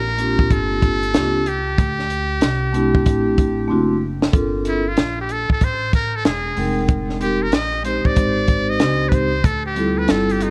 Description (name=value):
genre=hip hop, jazz-hop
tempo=94 BPM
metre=4/4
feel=swing 64% on 16ths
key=unclear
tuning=A4 = 435 Hz
part: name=trumpet with metal mute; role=melody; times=0.0-10.5 s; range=Eb4 to Eb5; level=-26 LUFS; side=equal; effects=tape echo
part: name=upright bass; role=bass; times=0.0-10.5 s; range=E1 to D2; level=-28 LUFS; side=equal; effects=none
part: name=vibraphone with soft mallets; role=accompaniment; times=0.2-10.5 s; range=G3 to G5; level=-23 LUFS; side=equal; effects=none
part: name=compact cocktail drum kit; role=drums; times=0.2-10.5 s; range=hi-hat, kick drum, snare drum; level=-21 LUFS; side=equal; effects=none
room=light reverb, small room ambience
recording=worn, warbling old tape, cassette tape, warbly pitch drift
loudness=-19 LUFS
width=mono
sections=0.0-4.3 A section; 4.3-10.5 B section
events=drum fill 3.7-4.3; muted trumpet solo 4.3-10.5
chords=0.0 C9sus4; 1.8 D9sus4; 4.3 Gm11; 6.6 Fm11; 9.4 Dm11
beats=0.51 1.15 | 1.78 2.42 3.06 3.70 | 4.34 4.98 5.61 6.25 | 6.89 7.53 8.17 8.81 | 9.44 10.08